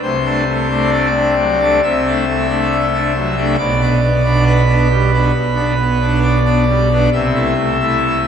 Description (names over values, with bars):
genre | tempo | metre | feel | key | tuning
classical, chorale-style piece for pipe organ | 68 BPM | 4/4 | rubato | G major | A4 = 440 Hz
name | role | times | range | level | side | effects
pipe organ, full organ | solo | 0.0-8.3 s | B1 to E5 | -12 LUFS | equal | none
room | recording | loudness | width
wet church reverb, RT60 2.6 s | minimal, uncompressed stereo recording | -12 LUFS | side -8 dB against mid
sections
0.0-8.3 A section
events
none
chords
0.0 D7/C; 3.6 G/B; 7.1 Am/C